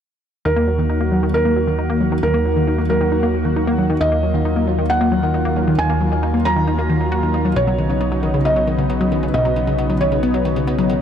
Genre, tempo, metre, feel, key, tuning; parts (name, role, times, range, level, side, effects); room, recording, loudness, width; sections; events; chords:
uplifting trance; 135 BPM; 4/4; straight; Eb minor; A4 = 444 Hz
felt-muted upright piano; second line; 0.5-11.0 s; Bb4 to Bb5; -21 LUFS; right 1 dB; ping-pong delay
lush unison pad; sustained chords; 0.5-10.9 s; C#3 to Gb4; -21 LUFS; equal; chorus
analog pluck; arpeggios; 0.5-10.9 s; C#3 to Gb4; -21 LUFS; left 2 dB; chorus, ping-pong delay
plucky analog bass; bass; 0.5-11.0 s; B1 to Eb2; -22 LUFS; right 1 dB
electronic hi-hat; drums; 0.5-11.0 s; -45 LUFS; left 2 dB; overdrive, low-pass filter on hats, small room ambience
light reverb, digital ambience; -15 LUFS; side -8 dB against mid
0.5-11.0 A section
filter sweep on drum 0.5-11.0
0.5 Ebm; 7.6 Badd9